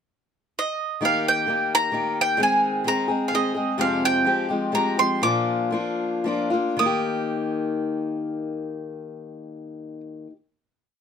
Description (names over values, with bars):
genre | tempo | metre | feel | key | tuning
acoustic folk duo or small band | 107-130 BPM | 3/4 | straight | Eb major | A4 = 440 Hz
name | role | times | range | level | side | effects
bowl-back mandolin | melody | 0.6-10.0 s | Eb5 to Eb6 | -22 LUFS | right 2 dB | none
picked steel-string acoustic guitar | accompaniment | 1.0-10.4 s | F2 to Ab4 | -24 LUFS | left 2 dB | none
room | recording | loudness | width
light reverb | close, detailed microphones | -21 LUFS | side -7 dB against mid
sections
0.0-1.0 pickup bar; 1.0-6.8 A section; 6.8-10.1 final chord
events
slowing down 3.8-6.8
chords
0.0 N.C.; 1.0 Eb; 2.4 Ab/Eb; 3.8 Fmadd9; 5.2 Bb; 6.8 Eb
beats
0.08 0.55 | 1.01 1.47 1.94 | 2.40 2.86 3.33 | 3.79 4.26 4.73 | 5.21 5.71 6.24 | 6.78 7.34 7.90 | 8.46 9.02 9.57